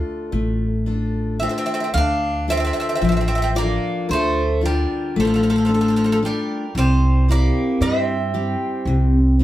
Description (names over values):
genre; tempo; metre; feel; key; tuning
greek folk, Greek bouzouki band; 113 BPM (eighths); 9/8; straight; D minor; A4 = 440 Hz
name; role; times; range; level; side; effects
Greek bouzouki; melody; 0.0-9.3 s; A4 to F5; -24 LUFS; right 1 dB; none
Greek bouzouki; second line; 0.0-9.4 s; F3 to D4; -28 LUFS; right 1 dB; none
picked steel-string acoustic guitar; accompaniment; 0.0-9.4 s; C3 to A4; -21 LUFS; left 2 dB; none
upright bass; bass; 0.3-9.4 s; A1 to G2; -20 LUFS; equal; none
room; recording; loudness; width
wet studio reverb, RT60 0.6 s; heard from further back in the room; -17 LUFS; side -14 dB against mid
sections
0.0-1.9 A section; 1.9-9.4 B section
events
speeding up 0.0-9.4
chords
0.0 Dm; 6.7 C